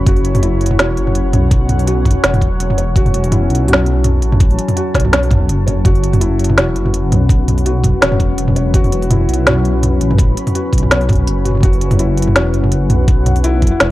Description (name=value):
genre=half-time drum and bass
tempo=166 BPM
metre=4/4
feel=swing 55% on 16ths, half-time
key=F# minor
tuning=A4 = 443 Hz
part: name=deep dark ambient pad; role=sustained chords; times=0.0-13.9 s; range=F#3 to B5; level=-21 LUFS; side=left 2 dB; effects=chorus, built-in reverb, sidechain pumping
part: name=felt-muted upright piano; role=arpeggios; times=0.0-13.9 s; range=E4 to C#5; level=-22 LUFS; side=left 1 dB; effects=tape echo
part: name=dark detuned saw bass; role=bass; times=0.0-13.9 s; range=E1 to B1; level=-15 LUFS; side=equal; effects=tube saturation
part: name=electronic kick drum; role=drums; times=0.1-13.7 s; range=none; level=-13 LUFS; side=equal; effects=none
part: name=organic electronic drum kit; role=drums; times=0.1-13.9 s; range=hi-hat, snare drum, toms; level=-15 LUFS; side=equal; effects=overdrive
room=little or no reverb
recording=dry, gritty hardware recording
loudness=-11 LUFS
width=side -16 dB against mid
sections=0.0-13.9 A section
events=none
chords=0.0 F#5